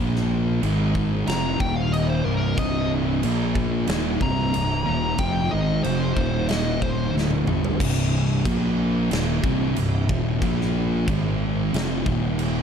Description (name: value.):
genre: stoner and doom metal.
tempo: 92 BPM.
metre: 4/4.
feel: straight.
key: C minor.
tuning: A4 = 441 Hz.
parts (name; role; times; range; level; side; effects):
thick fuzz guitar; riff; 0.0-12.6 s; C2 to Bb3; -26 LUFS; left 11 dB; distortion.
thick fuzz guitar; riff; 0.0-12.6 s; C2 to Bb3; -25 LUFS; right 8 dB; distortion.
fuzz fingered electric bass; bass; 0.0-12.6 s; C1 to Bb1; -26 LUFS; equal; overdrive.
big rock drum kit; drums; 0.2-12.5 s; crash cymbal, kick drum, snare drum, toms; -28 LUFS; equal; none.
fuzz lead guitar; melody; 1.3-7.1 s; Bb4 to Bb5; -29 LUFS; left 2 dB; wah, distortion, analog delay.
room: small room reverb.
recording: dark, warm production.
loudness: -20 LUFS.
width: side -7 dB against mid.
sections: 0.0-7.8 A section; 7.8-12.6 B section.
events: lead electric guitar solo 0.0-7.8; drum fill 7.2-7.8.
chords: 0.0 Bb5; 0.6 Ab5; 1.3 Fsus4; 1.6 Eb5; 2.3 C5; 3.2 Bb5; 3.9 Cm; 6.2 Eb5; 7.2 Dsus4; 7.8 C5; 8.5 Bb5; 9.1 Cm; 10.4 Bb5; 11.1 Ab5; 11.7 F5; 12.1 Eb5.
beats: 0.63 1.28 1.94 | 2.59 3.24 3.89 4.54 | 5.20 5.85 6.50 7.16 | 7.81 8.47 9.12 9.78 | 10.43 11.09 11.74 12.40.